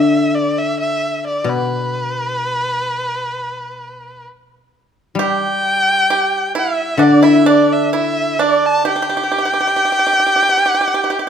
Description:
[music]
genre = chinese traditional, Chinese chamber ensemble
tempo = 65 BPM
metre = 4/4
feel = rubato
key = G gong mode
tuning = A4 = 440 Hz
[part]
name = clear erhu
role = melody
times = 0.0-11.3 s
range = B4 to A5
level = -17 LUFS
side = equal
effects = none
[part]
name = guzheng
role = accompaniment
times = 0.0-9.8 s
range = B2 to G3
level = -17 LUFS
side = left 2 dB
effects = none
[part]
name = pipa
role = second line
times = 5.2-11.3 s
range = D4 to G4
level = -18 LUFS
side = right 7 dB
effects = none
[sound]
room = moderate recital hall reverb, RT60 1.5 s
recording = close, detailed microphones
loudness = -13 LUFS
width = side -8 dB against mid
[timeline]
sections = 0.0-11.3 A section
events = none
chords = none

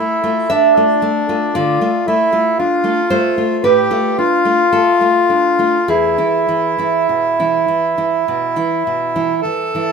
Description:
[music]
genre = romantic duo for bandoneon and classical guitar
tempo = 46-59 BPM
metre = 4/4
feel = rubato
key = unclear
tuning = A4 = 440 Hz
[part]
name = bandoneon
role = melody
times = 0.0-9.9 s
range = D4 to A4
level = -15 LUFS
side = equal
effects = none
[part]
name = nylon-string guitar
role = accompaniment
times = 0.0-9.9 s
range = E2 to E5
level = -17 LUFS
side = right 2 dB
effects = none
[sound]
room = light reverb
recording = minimal, uncompressed stereo recording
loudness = -13 LUFS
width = side -5 dB against mid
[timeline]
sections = 0.0-9.9 A section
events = none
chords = 0.0 Dm; 5.9 E

